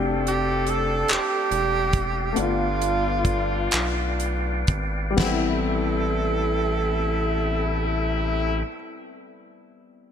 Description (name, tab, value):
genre	slow six-eight R&B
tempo	39-49 BPM (dotted quarters)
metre	6/8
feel	straight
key	A minor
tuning	A4 = 438 Hz
part	dark baby grand piano	accompaniment	0.0-10.1 s	G3 to G4	-29 LUFS	left 5 dB	none
part	tonewheel organ	sustained chords	0.0-8.6 s	A3 to G5	-32 LUFS	right 1 dB	overdrive, fast rotary speaker
part	clear horn section	stabs	0.0-8.6 s	C3 to A4	-30 LUFS	left 8 dB	none
part	rubbery square bass	bass	0.0-8.6 s	E1 to B1	-27 LUFS	equal	none
part	warm tenor saxophone	melody	0.3-8.7 s	F4 to A4	-27 LUFS	right 5 dB	none
part	damped 70s drum kit	drums	0.3-5.4 s	crash cymbal, handclaps, hi-hat, kick drum, snare drum	-26 LUFS	equal	none
room	light reverb, small room ambience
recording	bright 1980s-style digital production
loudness	-21 LUFS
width	side -8 dB against mid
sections	0.0-5.2 A section; 5.2-8.2 B section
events	slowing down 0.0-5.2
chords	0.0 F69; 2.4 G7; 5.2 Am7